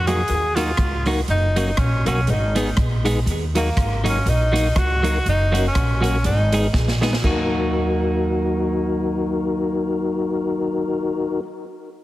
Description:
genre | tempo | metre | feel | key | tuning
ska | 121 BPM | 4/4 | swing 57% on 8ths | Eb minor | A4 = 440 Hz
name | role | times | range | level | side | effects
breathy tenor saxophone | melody | 0.0-6.7 s | Bb3 to Ab4 | -24 LUFS | equal | tape echo, plate reverb
upright bass | bass | 0.0-11.4 s | Gb1 to F2 | -22 LUFS | equal | none
clean electric guitar | accompaniment | 0.1-11.5 s | Gb3 to Ab4 | -25 LUFS | right 2 dB | spring reverb, tape echo, plate reverb
mellow tonewheel organ | stabs | 0.1-11.4 s | Db4 to Cb5 | -25 LUFS | left 4 dB | chorus vibrato, stopped rotary speaker, tape echo, plate reverb
swinging big-band drum kit | drums | 0.1-7.4 s | china cymbal, hi-hat, kick drum, rim click, snare drum | -25 LUFS | equal | none
room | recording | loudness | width
light reverb | heavily compressed radio sound | -18 LUFS | side -15 dB against mid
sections
0.0-7.2 A section; 7.2-11.2 B section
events
drum fill 6.7-7.2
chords
0.0 Ebm; 1.3 Gb; 2.3 Abm; 3.3 Ebm; 5.3 Gb; 6.2 Abm; 7.2 Ebm

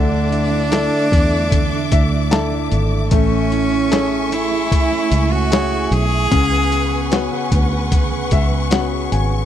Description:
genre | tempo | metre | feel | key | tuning
pop ballad | 75 BPM | 4/4 | straight | A major | A4 = 440 Hz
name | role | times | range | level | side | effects
bright cello | melody | 0.0-7.5 s | C#4 to G#4 | -20 LUFS | right 1 dB | none
clear baby grand piano | accompaniment | 0.0-9.5 s | C#3 to A5 | -23 LUFS | left 8 dB | none
warm symphonic string section | sustained chords | 0.0-9.5 s | A3 to D6 | -24 LUFS | equal | none
fingerpicked steel-string acoustic guitar | arpeggios | 0.0-9.5 s | C#3 to A4 | -25 LUFS | right 18 dB | none
fingered electric bass | bass | 0.0-9.5 s | G#1 to E2 | -20 LUFS | equal | none
dusty soul sampler-style drum kit | drums | 0.3-9.3 s | hi-hat, kick drum, snare drum | -17 LUFS | equal | none
room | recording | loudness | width
little or no reverb | dry, close 1970s-style studio recording | -14 LUFS | side -10 dB against mid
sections
0.0-9.5 A section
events
grand piano fill 1.5-3.1, 7.9-9.5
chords
0.0 Dsus2; 3.1 Amaj7; 6.3 C#7sus4

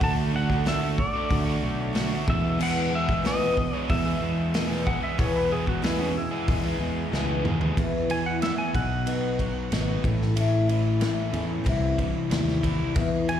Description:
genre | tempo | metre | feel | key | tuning
folk rock and heartland rock | 93 BPM | 4/4 | straight | E mixolydian | A4 = 443 Hz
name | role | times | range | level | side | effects
pedal steel guitar | melody | 0.0-7.1 s | D5 to A5 | -31 LUFS | equal | slapback echo, tape echo
picked twelve-string acoustic guitar | accompaniment | 0.0-13.4 s | E2 to G#4 | -30 LUFS | left 4 dB | slapback echo
crunchy overdriven guitar | riff | 0.0-13.4 s | E2 to G#4 | -29 LUFS | right 1 dB | slapback echo
fingered electric bass | bass | 0.0-13.4 s | G#1 to E2 | -27 LUFS | equal | none
natural country drum kit | drums | 0.0-13.4 s | crash cymbal, hi-hat, kick drum, ride cymbal, snare drum, toms | -29 LUFS | equal | none
clean lap steel guitar | second line | 4.9-13.4 s | C#4 to G#5 | -32 LUFS | right 2 dB | slapback echo
room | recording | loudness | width
light reverb, studio ambience | live gig heard through the venue's PA, recital hall reverb | -23 LUFS | side -10 dB against mid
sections
0.0-7.8 A section; 7.8-13.4 B section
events
drum fill 7.1-7.8; electric slide guitar solo 7.8-13.4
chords
0.0 D; 2.3 E; 7.8 Esus2; 8.7 B; 10.0 A; 11.7 C

